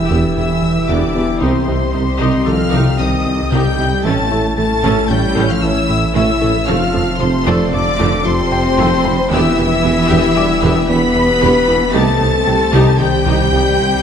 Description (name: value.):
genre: cinematic, hybrid orchestral and electronic film score.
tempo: 114 BPM.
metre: 5/4.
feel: straight.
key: E phrygian.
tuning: A4 = 440 Hz.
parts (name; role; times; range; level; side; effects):
warm symphonic violin section; melody; 0.0-14.0 s; C6 to B6; -22 LUFS; left 4 dB; none.
warm symphonic violin section; second line; 0.0-14.0 s; C5 to B5; -23 LUFS; left 2 dB; none.
chorused pulse-width pad; sustained chords; 0.0-14.0 s; Eb3 to A5; -22 LUFS; left 1 dB; none.
warm French horn section; sustained chords; 0.0-14.0 s; C4 to B4; -21 LUFS; left 4 dB; none.
dark symphonic cello section; bass; 0.0-14.0 s; C3 to B3; -22 LUFS; right 4 dB; none.
swelling detuned saw bass; bass; 0.0-14.0 s; E1 to C2; -24 LUFS; equal; none.
sub drop; sound effects; 0.0-1.4 s; none; barely audible; none; none.
warm grand piano; texture; 0.0-12.0 s; A4 to D6; -28 LUFS; left 1 dB; none.
warm symphonic viola section; accompaniment; 0.1-13.6 s; F3 to A4; -22 LUFS; equal; none.
harp-like synth pluck; arpeggios; 0.1-13.7 s; C3 to A4; -24 LUFS; left 5 dB; chorus.
fat analog bass; riff; 0.1-13.9 s; C2 to A3; -22 LUFS; right 2 dB; none.
mellow tuba; bass; 0.1-13.6 s; E1 to C2; -22 LUFS; right 4 dB; none.
warm symphonic double bass section; bass; 0.1-13.6 s; A1 to F2; -22 LUFS; right 4 dB; none.
room: moderate scoring stage reverb, RT60 1.7 s.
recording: dark, warm production.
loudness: -12 LUFS.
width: side -8 dB against mid.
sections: 0.0-14.0 A section.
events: impact 0.0-1.4.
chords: 0.0 Em; 1.4 Cm; 4.0 A; 6.7 F; 9.3 Em; 11.9 Cm.